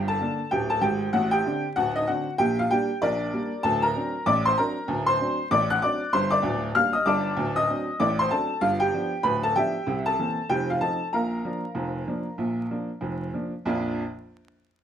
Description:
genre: ragtime piano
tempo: 96 BPM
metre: 2/4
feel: swing 59% on 16ths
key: Bb major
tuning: A4 = 440 Hz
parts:
  - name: clear upright piano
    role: solo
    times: 0.0-14.0 s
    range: D1 to F#6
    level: -23 LUFS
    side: equal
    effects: none
room: moderate studio reverb, RT60 0.7 s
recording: minimal, uncompressed stereo recording, vinyl crackle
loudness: -23 LUFS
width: side -9 dB against mid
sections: 0.0-13.6 A section; 13.6-14.8 B section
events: none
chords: 0.0 Gm; 1.1 D7/A; 2.4 Gm/Bb; 3.6 D7; 6.1 Gm; 7.4 D7; 8.6 G7; 9.9 C7; 10.5 F7; 11.1 Bb

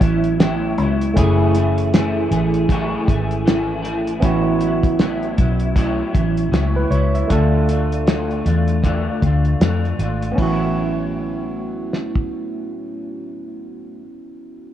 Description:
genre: indie pop, bedroom pop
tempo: 78 BPM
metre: 4/4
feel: swing 60% on 16ths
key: A major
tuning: A4 = 442 Hz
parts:
  - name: barky tine electric piano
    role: accompaniment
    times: 0.0-14.7 s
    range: A3 to E5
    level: -24 LUFS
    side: right 4 dB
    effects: overdrive, cassette tape
  - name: electric guitar through a small old amp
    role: accompaniment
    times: 0.0-14.2 s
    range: F#2 to G#4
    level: -24 LUFS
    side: left 4 dB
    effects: ensemble chorus, warbly pitch drift
  - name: vintage muted fingered electric bass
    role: bass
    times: 0.0-14.0 s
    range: F#1 to F2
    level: -19 LUFS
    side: equal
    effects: none
  - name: cloth-damped thuddy drum kit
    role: drums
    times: 0.0-12.3 s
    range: hi-hat, kick drum, ride cymbal, snare drum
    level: -18 LUFS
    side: equal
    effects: none
room: light reverb, small room ambience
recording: worn, warbling old tape, cassette tape, warbly pitch drift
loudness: -16 LUFS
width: side -11 dB against mid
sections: 0.0-10.4 A section; 10.4-13.5 B section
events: none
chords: 0.0 A6; 1.2 F#m9; 4.2 A6; 7.3 Dm; 10.4 A6

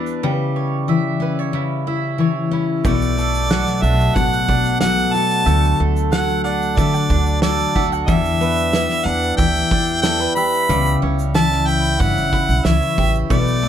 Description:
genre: acoustic pop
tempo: 92 BPM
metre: 4/4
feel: straight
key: unclear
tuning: A4 = 440 Hz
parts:
  - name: picked steel-string acoustic guitar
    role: accompaniment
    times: 0.0-13.7 s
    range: B2 to G4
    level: -20 LUFS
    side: left 4 dB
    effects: none
  - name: mandolin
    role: arpeggios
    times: 0.0-13.7 s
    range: G3 to F#5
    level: -25 LUFS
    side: right 7 dB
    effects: none
  - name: loose indie drum kit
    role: drums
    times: 0.1-13.6 s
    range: kick drum, shaker, snare drum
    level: -23 LUFS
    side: right 1 dB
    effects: none
  - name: upright bass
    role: bass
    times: 2.8-13.7 s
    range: G1 to D3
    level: -21 LUFS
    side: right 1 dB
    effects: none
  - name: clear harmonica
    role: melody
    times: 2.9-13.7 s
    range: D5 to B5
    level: -20 LUFS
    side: equal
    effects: none
room: light reverb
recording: none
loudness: -15 LUFS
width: side -10 dB against mid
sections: 0.0-2.9 A section; 2.9-13.7 B section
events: none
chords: 0.2 C#dim; 2.9 Bm7; 5.5 D; 8.1 Em7; 10.7 C#dim

